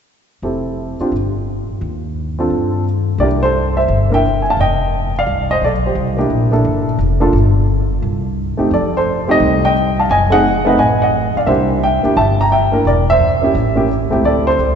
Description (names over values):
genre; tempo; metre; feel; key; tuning
jazz piano trio; 174 BPM; 4/4; swing 65% on 8ths; C mixolydian; A4 = 439 Hz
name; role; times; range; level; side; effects
dark baby grand piano; melody; 0.4-14.8 s; A3 to Bb5; -14 LUFS; right 1 dB; none
upright bass; bass; 0.4-14.8 s; E1 to G2; -17 LUFS; left 1 dB; none
room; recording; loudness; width
wet church reverb, RT60 3.4 s; recorded in a church or concert hall, nothing above 7.9 kHz; -13 LUFS; side -7 dB against mid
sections
0.4-3.2 A section; 3.2-14.8 B section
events
none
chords
0.4 Fmaj9; 1.1 N.C.; 2.5 G7sus4; 3.2 C9; 4.6 F7sus2; 6.0 C9; 7.3 N.C.; 8.0 C5; 8.7 F9; 10.1 F#m6; 11.5 C9; 12.9 E(b5, no3); 13.5 A7; 14.2 D7(no3)